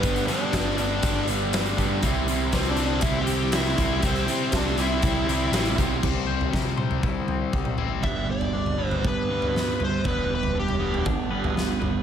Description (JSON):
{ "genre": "quiet-loud alternative rock", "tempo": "120 BPM", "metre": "4/4", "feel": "straight", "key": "unclear", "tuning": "A4 = 440 Hz", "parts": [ { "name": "smooth overdriven lead guitar", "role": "melody", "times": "0.0-11.0 s", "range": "B3 to G5", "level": "-29 LUFS", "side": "left 3 dB", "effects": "digital delay" }, { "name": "mellow tonewheel organ", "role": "sustained chords", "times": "0.0-6.0 s", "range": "G4 to C6", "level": "-38 LUFS", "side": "left 1 dB", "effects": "none" }, { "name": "distorted electric guitar", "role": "riff", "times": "0.0-8.0 s", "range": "G2 to D4", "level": "-30 LUFS", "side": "left 12 dB", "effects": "distortion" }, { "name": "thick fuzz guitar", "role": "riff", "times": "0.0-12.0 s", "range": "C3 to G4", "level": "-28 LUFS", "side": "right 10 dB", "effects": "distortion" }, { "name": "growling picked electric bass", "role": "bass", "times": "0.0-12.0 s", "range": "E1 to C3", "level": "-29 LUFS", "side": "equal", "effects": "overdrive" }, { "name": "big rock drum kit", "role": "drums", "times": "0.0-11.9 s", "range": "crash cymbal, hi-hat, kick drum, snare drum, toms", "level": "-27 LUFS", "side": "equal", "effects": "none" }, { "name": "twangy electric guitar", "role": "arpeggios", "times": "6.0-12.0 s", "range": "C3 to C5", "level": "-34 LUFS", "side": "left 7 dB", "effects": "phaser, digital delay" } ], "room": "moderate studio reverb, RT60 0.6 s", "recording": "none", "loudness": "-22 LUFS", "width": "side -8 dB against mid", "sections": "0.0-6.0 A section; 6.0-8.0 B section; 8.0-12.0 C section", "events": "none", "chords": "0.0 G; 2.0 C; 8.0 G" }